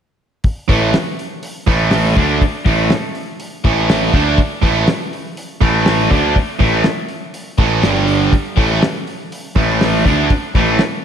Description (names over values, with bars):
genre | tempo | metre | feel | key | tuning
classic rock | 122 BPM | 4/4 | straight | unclear | A4 = 440 Hz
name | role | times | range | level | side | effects
cloth-damped thuddy drum kit | drums | 0.4-10.9 s | hi-hat, kick drum, snare drum | -17 LUFS | left 1 dB | none
distorted electric guitar | riff | 0.7-10.8 s | G2 to D4 | -18 LUFS | right 10 dB | overdrive
overdriven electric guitar | riff | 0.7-10.8 s | G2 to D4 | -21 LUFS | left 10 dB | phaser
fuzz picked electric bass | bass | 0.7-10.8 s | G1 to D2 | -18 LUFS | left 1 dB | overdrive
room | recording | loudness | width
moderate lush hall reverb, RT60 1.9 s, studio ambience | big arena sound | -13 LUFS | side -8 dB against mid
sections
0.4-11.0 A section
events
none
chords
0.4 A5; 7.8 G5; 8.6 A5